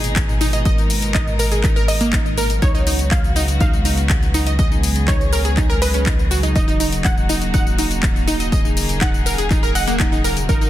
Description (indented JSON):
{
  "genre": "progressive house",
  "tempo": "122 BPM",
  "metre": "4/4",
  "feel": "straight",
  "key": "Eb minor",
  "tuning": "A4 = 440 Hz",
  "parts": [
    { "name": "wide unison pluck", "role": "melody", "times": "0.0-10.7 s", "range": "Bb4 to Gb5", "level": "-27 LUFS", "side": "right 1 dB", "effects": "cassette tape, sidechain pumping, ping-pong delay" },
    { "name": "rich chamber string section", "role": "sustained chords", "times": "0.0-10.7 s", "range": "Bb2 to Bb4", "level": "-25 LUFS", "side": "equal", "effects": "sidechain pumping" },
    { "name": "round analog bass", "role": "bass", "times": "0.0-10.7 s", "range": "Eb1 to Db2", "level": "-22 LUFS", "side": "equal", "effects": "sidechain pumping" },
    { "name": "house drum kit", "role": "drums", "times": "0.0-10.7 s", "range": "handclaps, hi-hat, tambourine", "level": "-25 LUFS", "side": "left 2 dB", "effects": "none" },
    { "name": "electronic kick drum", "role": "drums", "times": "0.2-10.6 s", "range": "none", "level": "-19 LUFS", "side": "equal", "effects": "none" },
    { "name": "wide unison pluck", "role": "arpeggios", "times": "0.4-10.7 s", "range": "Bb3 to Eb5", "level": "-24 LUFS", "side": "right 1 dB", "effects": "sidechain pumping, ping-pong delay" }
  ],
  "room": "little or no reverb",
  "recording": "dense, heavily limited modern master",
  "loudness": "-15 LUFS",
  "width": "side -13 dB against mid",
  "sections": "0.0-10.7 A section",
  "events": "none",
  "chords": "0.0 Abmadd9; 2.6 Db7sus4; 6.6 Ebm7",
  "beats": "0.16 | 0.65 1.15 1.64 2.13 | 2.62 3.11 3.60 4.10 | 4.59 5.08 5.57 6.06 | 6.56 7.05 7.54 8.03 | 8.52 9.02 9.51 10.00 | 10.49"
}